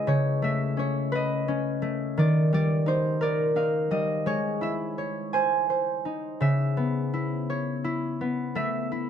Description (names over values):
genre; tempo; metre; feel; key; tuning
children's music, lullaby; 56 BPM (dotted quarters); 6/8; rubato; C# minor; A4 = 440 Hz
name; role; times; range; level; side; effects
concert harp; solo; 0.0-9.1 s; C#3 to G#5; -24 LUFS; equal; none
room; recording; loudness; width
moderate studio reverb, RT60 0.6 s; dark, warm production; -24 LUFS; side -8 dB against mid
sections
0.0-9.1 A section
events
none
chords
0.1 Aadd9/C#; 2.2 D#; 4.3 C#m/G#; 5.3 G#; 6.4 C#m7; 8.6 A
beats
| 0.07 1.13 | 2.18 3.22 | 4.26 5.33 | 6.41 7.49 | 8.56